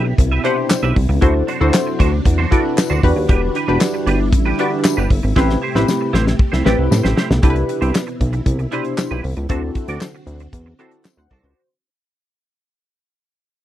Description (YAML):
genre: early-eighties boogie funk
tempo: 116 BPM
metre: 4/4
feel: straight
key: unclear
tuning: A4 = 440 Hz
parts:
  - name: funky polysynth comp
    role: accompaniment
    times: 0.0-11.7 s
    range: C4 to F#5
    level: -20 LUFS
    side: left 1 dB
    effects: chorus
  - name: string machine, full ensemble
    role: sustained chords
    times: 0.0-11.6 s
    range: B2 to G4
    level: -26 LUFS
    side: equal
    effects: ensemble chorus
  - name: clean electric guitar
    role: riff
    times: 0.0-11.6 s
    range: D4 to F#5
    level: -25 LUFS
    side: right 6 dB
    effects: ensemble chorus
  - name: chorused synth bass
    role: bass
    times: 0.0-11.5 s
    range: E1 to A2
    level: -18 LUFS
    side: equal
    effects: none
  - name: damped 70s drum kit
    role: drums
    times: 0.2-11.6 s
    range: handclaps, hi-hat, kick drum, snare drum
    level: -16 LUFS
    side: equal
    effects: none
  - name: tambourine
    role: percussion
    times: 0.7-11.2 s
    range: none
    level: -32 LUFS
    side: left 13 dB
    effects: none
room: little or no reverb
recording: dry, close 1970s-style studio recording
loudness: -14 LUFS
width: side -12 dB against mid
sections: 0.0-7.4 A section; 7.4-11.6 B section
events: drum fill 5.4-7.4; fade-out 7.4-11.6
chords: 0.0 Cmaj7; 1.2 D7; 3.0 Em7; 5.4 Am7; 7.4 Cmaj7; 9.5 D7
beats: 0.19 0.71 | 1.22 1.74 2.26 2.78 | 3.29 3.81 4.33 4.84 | 5.36 5.88 6.40 6.91 | 7.43 7.95 8.46 8.98 | 9.50 10.02 10.53 11.05